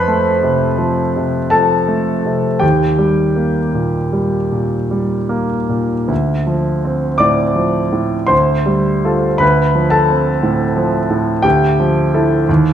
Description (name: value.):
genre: classical, impressionist solo piano.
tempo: 50-60 BPM.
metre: 3/4.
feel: rubato.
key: D dorian.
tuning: A4 = 441 Hz.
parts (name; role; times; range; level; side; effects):
clear concert grand piano; solo; 0.0-12.7 s; D2 to D6; -13 LUFS; equal; none.
room: moderate recital hall reverb, RT60 1.7 s.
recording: dark, warm production.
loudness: -13 LUFS.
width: side -10 dB against mid.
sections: 0.0-12.7 A section.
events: none.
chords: 0.0 F; 2.6 Eb; 6.1 Dm7; 8.3 Fadd9/D; 9.4 Dm7; 11.4 Gsus2/D.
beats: 0.44 1.53 | 2.63 3.75 4.92 | 6.10 7.21 8.32 | 9.42 10.43 11.45 | 12.48.